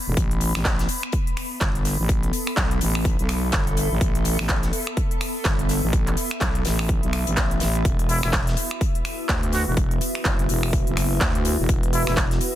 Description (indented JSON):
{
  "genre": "bass house",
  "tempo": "125 BPM",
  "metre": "4/4",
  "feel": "swing 59% on 16ths",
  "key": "unclear",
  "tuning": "A4 = 444 Hz",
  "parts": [
    { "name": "granular cloud pad", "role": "texture", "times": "0.0-12.6 s", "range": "B3 to B5", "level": "-30 LUFS", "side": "equal", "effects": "built-in reverb, sidechain pumping" },
    { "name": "growling FM bass", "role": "bass", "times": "0.1-12.4 s", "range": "E1 to D2", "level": "-24 LUFS", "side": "equal", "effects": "overdrive, sidechain pumping" },
    { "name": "big-room dance drum kit", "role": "drums", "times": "0.2-12.5 s", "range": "finger snaps, handclaps, hi-hat", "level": "-27 LUFS", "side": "equal", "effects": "overdrive" },
    { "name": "damped 70s drum kit", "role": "drums", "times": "0.2-12.5 s", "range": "hi-hat, snare drum", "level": "-35 LUFS", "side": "left 4 dB", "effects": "high-pass filter on hats, high-pass filter on snare, high-pass filter on room" },
    { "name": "electronic kick drum", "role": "drums", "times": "0.2-12.3 s", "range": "none", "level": "-23 LUFS", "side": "equal", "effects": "overdrive" },
    { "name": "dark analog pad", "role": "sustained chords", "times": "8.5-12.6 s", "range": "E4 to B4", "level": "-32 LUFS", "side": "equal", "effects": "chorus, phaser, sidechain pumping" },
    { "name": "trumpet with plunger mute", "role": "melody", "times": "8.1-12.1 s", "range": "E4 to F#4", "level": "-29 LUFS", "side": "left 1 dB", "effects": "digital delay" }
  ],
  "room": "studio reverb",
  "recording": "dense, heavily limited modern master",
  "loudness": "-20 LUFS",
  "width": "side -13 dB against mid",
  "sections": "0.0-12.6 A section",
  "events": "none",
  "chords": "0.2 Asus2; 7.8 Esus2"
}